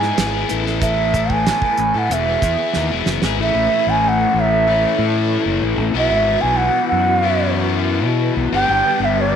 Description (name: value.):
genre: psychedelic rock.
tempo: 94 BPM.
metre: 4/4.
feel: straight.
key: unclear.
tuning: A4 = 440 Hz.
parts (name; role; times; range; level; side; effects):
bansuri; melody; 0.0-9.4 s; D5 to G#5; -18 LUFS; right 2 dB; slapback echo.
string machine, violas; sustained chords; 0.0-9.4 s; D4 to E5; -28 LUFS; right 12 dB; ensemble chorus.
overdriven electric guitar; riff; 0.0-9.4 s; E2 to A4; -21 LUFS; left 13 dB; phaser.
fuzz fingered electric bass; bass; 0.0-9.4 s; E1 to B2; -21 LUFS; equal; overdrive.
damped 70s drum kit; drums; 0.0-3.4 s; hi-hat, kick drum, snare drum; -22 LUFS; right 3 dB; none.
room: moderate plate reverb, RT60 1.4 s.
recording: 1960s-style stereo with parts hard left and right.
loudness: -15 LUFS.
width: side -8 dB against mid.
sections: 0.0-3.4 A section; 3.4-9.4 B section.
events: drum fill 2.7-3.4.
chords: 0.0 E/G#; 0.5 Asus2; 2.1 E; 3.4 A; 6.0 Bsus4; 8.5 G.